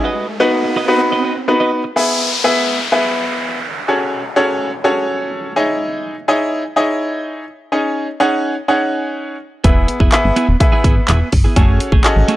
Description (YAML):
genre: dance-pop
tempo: 125 BPM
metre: 4/4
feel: straight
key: E major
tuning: A4 = 441 Hz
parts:
  - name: bright grand piano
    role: accompaniment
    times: 0.0-12.4 s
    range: B3 to F#5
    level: -16 LUFS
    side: equal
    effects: sidechain pumping
  - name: twelve-string electric guitar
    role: riff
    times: 0.0-1.9, 9.6-12.4 s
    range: A3 to D#5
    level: -20 LUFS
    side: right 4 dB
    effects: wide subtle chorus
  - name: riser and downlifter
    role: sound effects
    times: 0.0-5.8 s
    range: none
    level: -22 LUFS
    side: equal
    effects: none
  - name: plucky analog bass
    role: bass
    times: 9.6-12.2 s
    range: E1 to A1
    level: -15 LUFS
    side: equal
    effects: sidechain pumping
  - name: pop drum kit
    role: drums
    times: 9.6-12.4 s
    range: handclaps, hi-hat, kick drum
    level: -13 LUFS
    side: equal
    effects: none
room: light reverb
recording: dry, gritty hardware recording, transformer saturation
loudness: -13 LUFS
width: side -15 dB against mid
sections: 0.0-2.0 A section; 2.0-12.4 B section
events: riser 0.0-2.0; break 0.0-2.0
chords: 0.0 B; 2.0 E; 3.9 F#madd9; 5.6 C#madd9; 7.7 G#sus4; 9.6 E; 11.6 F#madd9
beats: | 0.04 0.52 1.00 1.48 | 1.96 2.44 2.92 3.40 | 3.88 4.36 4.84 5.32 | 5.80 6.28 6.76 7.24 | 7.72 8.20 8.68 9.16 | 9.64 10.12 10.60 11.08 | 11.56 12.04